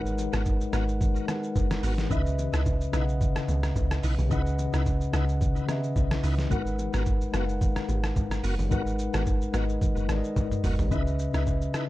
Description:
amapiano; 109 BPM; 4/4; swing 55% on 16ths; C# minor; A4 = 440 Hz
mellow tine electric piano; accompaniment; 0.0-11.9 s; C#3 to F#5; -30 LUFS; left 2 dB; slow stereo tremolo
deep log drum bass; bass; 0.0-11.7 s; F#1 to C#2; -28 LUFS; equal
trip hop sampler-style drum kit; drums; 0.1-11.9 s; hi-hat, kick drum, rim click, shaker, snare drum, toms; -29 LUFS; equal
bongos and congas; percussion; 0.2-11.6 s; -39 LUFS; right 3 dB
bright tonewheel organ; stabs; 0.3-11.9 s; B3 to B4; -38 LUFS; right 2 dB; overdrive, chorus vibrato, fast rotary speaker, tape echo
digital ambience; dark, warm production; -24 LUFS; side -16 dB against mid
0.0-10.9 A section
drop 0.0-10.9; drum fill 10.4-10.9
0.0 G#m9; 2.1 C#m9; 6.5 G#m9; 10.9 C#m9

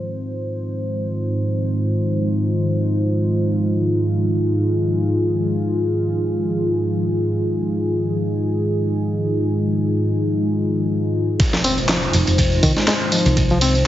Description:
breakbeat, breaks; free time; F minor; A4 = 440 Hz
dark analog pad; sustained chords; 0.0-13.9 s; Ab3 to C5; -19 LUFS; equal; chorus, phaser, sidechain pumping
breakbeat sampler-style drum kit; drums; 11.4-13.7 s; kick drum, ride cymbal, snare drum; -20 LUFS; equal
garage drum kit; drums; 11.4-13.8 s; handclaps, ride cymbal, tambourine; -23 LUFS; equal; low-pass filter on perc, low-pass filter on cymbals, low-pass filter on snare, low-pass filter on room
impact; sound effects; 11.4-13.4 s; -28 LUFS; equal
barky reed electric piano; riff; 11.5-13.7 s; Eb3 to C4; -21 LUFS; left 1 dB; overdrive, vintage 12-bit sampler grit, tape echo
hollow-body short-scale fingered electric bass; bass; 12.1-13.9 s; F1 to C2; -18 LUFS; equal
light reverb, digital ambience; heavily compressed radio sound, nothing above 7.6 kHz; -17 LUFS; side -13 dB against mid
0.0-11.4 A section; 11.4-13.9 B section
drop 11.4-13.9; impact 11.4-13.4
0.0 Fm7

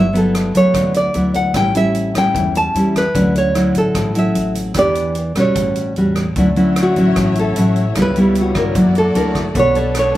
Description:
bossa nova; 150 BPM; 4/4; straight; D major; A4 = 438 Hz
nylon-string guitar; melody; 0.0-10.2 s; F#4 to A5; -18 LUFS; right 1 dB
nylon-string guitar; accompaniment; 0.0-10.2 s; G2 to C#5; -16 LUFS; equal
upright bass; bass; 0.0-10.1 s; G1 to G2; -23 LUFS; equal
swinging big-band drum kit; drums; 0.2-10.2 s; hi-hat, kick drum, rim click; -25 LUFS; equal
warm symphonic string section; sustained chords; 6.4-10.2 s; G3 to E5; -26 LUFS; left 2 dB
little or no reverb; -13 LUFS; side -14 dB against mid
0.0-6.4 A section; 6.4-10.2 B section
nylon-string guitar solo 6.4-10.2
0.0 Gmaj13; 1.5 A7; 3.1 Dmaj9; 4.8 Em7; 5.6 A6; 6.4 Dmaj9; 8.0 C#m7b5; 8.8 F#7alt; 9.6 Bm9

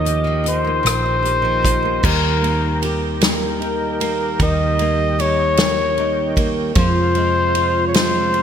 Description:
six-eight pop ballad; 51 BPM (dotted quarters); 6/8; straight; A4 = 440 Hz
warm flugelhorn; melody; 0.0-8.4 s; Bb4 to Eb5; -19 LUFS; left 1 dB; ping-pong delay
flamenco guitar; accompaniment; 0.0-8.4 s; Eb3 to G4; -24 LUFS; equal; double-tracked left and right
tonewheel organ; sustained chords; 0.0-8.4 s; C3 to G4; -26 LUFS; right 2 dB; chorus vibrato, slow rotary speaker
hollow-body short-scale fingered electric bass; bass; 0.0-8.4 s; Bb1 to F2; -22 LUFS; right 1 dB
natural country drum kit; drums; 0.1-8.4 s; crash cymbal, hi-hat, kick drum, ride cymbal, rim click, snare drum; -21 LUFS; equal; gated reverb
moderate lush hall reverb, RT60 2.2 s; bright 1980s-style digital production; -15 LUFS; side -8 dB against mid
0.0-2.0 A section; 2.0-8.4 B section
0.0 Ebadd9; 2.0 Eb; 6.8 Fm

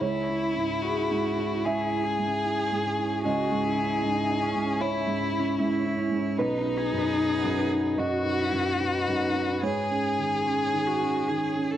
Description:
neoclassical piano and strings; 75 BPM; 4/4; uneven beats, rubato; C# minor; A4 = 440 Hz
rich violin; melody; 0.0-11.8 s; D#4 to G#4; -28 LUFS; left 4 dB
warm cello; second line; 0.0-11.8 s; C#4 to A4; -33 LUFS; right 4 dB
felt-muted upright piano; accompaniment; 0.0-11.8 s; B1 to E5; -28 LUFS; right 3 dB
concert harp; arpeggios; 0.0-11.8 s; C#4 to D#6; -34 LUFS; left 2 dB; analog delay
wet spring reverb, RT60 1.4 s, small room ambience; worn, warbling old tape, cassette tape, warbly pitch drift; -24 LUFS; side -11 dB against mid
0.0-11.8 A section
0.0 C#madd9; 6.4 B; 9.6 G#sus4

